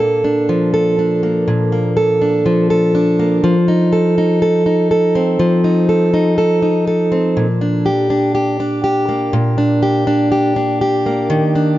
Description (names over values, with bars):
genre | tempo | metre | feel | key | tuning
pop | 61 BPM | 4/4 | straight | Bb major | A4 = 439 Hz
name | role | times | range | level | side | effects
fingerpicked plugged-in steel-string acoustic guitar | solo | 0.0-11.8 s | Bb2 to A4 | -12 LUFS | equal | none
room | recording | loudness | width
light reverb | nothing above 7.6 kHz | -12 LUFS | side -15 dB against mid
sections
0.0-3.4 A section; 3.4-11.8 B section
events
none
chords
0.0 Bbmaj7; 3.4 F7; 7.4 Bb6